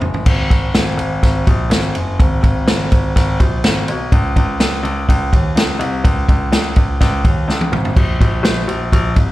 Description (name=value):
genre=jangly indie pop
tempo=125 BPM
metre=4/4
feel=straight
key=unclear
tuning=A4 = 440 Hz
part: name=warm concert grand piano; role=bass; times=0.0-9.3 s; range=Gb1 to Eb2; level=-18 LUFS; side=left 1 dB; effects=none
part: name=vintage drum kit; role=drums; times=0.0-9.3 s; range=crash cymbal, kick drum, ride cymbal, snare drum, toms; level=-14 LUFS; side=equal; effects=none
room=little or no reverb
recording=live gig heard through the venue's PA, club reverb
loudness=-13 LUFS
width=side -17 dB against mid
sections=0.3-9.3 A section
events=drum fill 0.0, 7.5-8.0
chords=none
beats=| 0.27 0.75 1.23 1.72 | 2.20 2.68 3.16 3.64 | 4.12 4.61 5.08 5.57 | 6.05 6.53 7.01 7.49 | 7.97 8.45 8.93